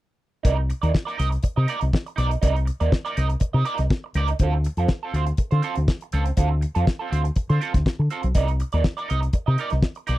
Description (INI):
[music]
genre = disco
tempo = 121 BPM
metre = 4/4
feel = straight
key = C dorian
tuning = A4 = 443 Hz
[part]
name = electric guitar at the edge of break-up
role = accompaniment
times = 0.4-10.2 s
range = C4 to Eb5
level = -28 LUFS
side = right 6 dB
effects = wah
[part]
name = fingered electric bass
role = bass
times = 0.4-10.2 s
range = B1 to D3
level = -21 LUFS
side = equal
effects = none
[part]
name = damped 70s drum kit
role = drums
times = 0.4-10.2 s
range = hi-hat, kick drum, snare drum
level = -21 LUFS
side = left 1 dB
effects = none
[sound]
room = little or no reverb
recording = dry, close 1970s-style studio recording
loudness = -20 LUFS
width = side -16 dB against mid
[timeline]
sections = 0.4-10.2 A section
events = none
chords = 0.4 Cm9; 4.4 Dm7; 8.4 Cm9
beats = | 0.45 0.94 1.44 1.93 | 2.43 2.92 3.42 3.91 | 4.40 4.90 5.39 5.88 | 6.38 6.87 7.37 7.86 | 8.35 8.85 9.34 9.84